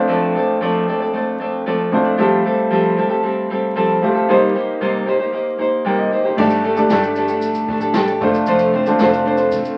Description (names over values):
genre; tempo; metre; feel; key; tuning
acoustic pop; 115 BPM; 4/4; straight; G minor; A4 = 441 Hz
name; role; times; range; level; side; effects
clear upright piano; accompaniment; 0.0-9.8 s; F2 to G5; -21 LUFS; equal; none
nylon-string guitar; accompaniment; 0.0-9.8 s; C3 to D5; -20 LUFS; equal; none
picked steel-string acoustic guitar; arpeggios; 6.4-9.8 s; A3 to G4; -26 LUFS; equal; none
upright bass; bass; 6.4-9.6 s; F1 to A1; -38 LUFS; equal; none
jazz brush drum kit; drums; 6.4-9.8 s; crash cymbal, kick drum, shaker, snare drum; -29 LUFS; equal; none
room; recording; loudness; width
wet studio reverb, RT60 0.6 s; very old 78 rpm record, vinyl crackle; -17 LUFS; mono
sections
0.0-6.4 A section; 6.4-9.8 B section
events
none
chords
0.0 Dm7/F; 2.2 Fadd9; 4.3 Cm7; 6.4 Gsus2; 8.2 Dm7/F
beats
| 0.10 0.62 1.15 1.67 | 2.19 2.71 3.24 3.76 | 4.29 4.81 5.33 5.86 | 6.38 6.90 7.43 7.95 | 8.47 9.00 9.52